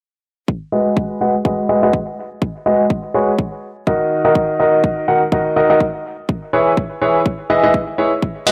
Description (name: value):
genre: piano house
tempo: 124 BPM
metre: 4/4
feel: swing 56% on 16ths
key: G# minor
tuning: A4 = 441 Hz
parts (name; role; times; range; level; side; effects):
- electronic kick drum; drums; 0.5-8.3 s; none; -22 LUFS; equal; high-pass filter on kick
- bright grand piano; riff; 0.7-8.5 s; D#3 to F#5; -17 LUFS; equal; sidechain pumping, low-pass filter, analog delay
- electronic hi-hat; drums; 8.5 s; none; -16 LUFS; equal; none
room: moderate plate reverb, RT60 1.6 s, studio reverb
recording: dry, gritty hardware recording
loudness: -17 LUFS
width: mono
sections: 0.5-8.5 A section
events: filter sweep on grand piano 0.5-8.5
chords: 0.5 G#m7; 4.1 D#m; 6.0 C#m7/E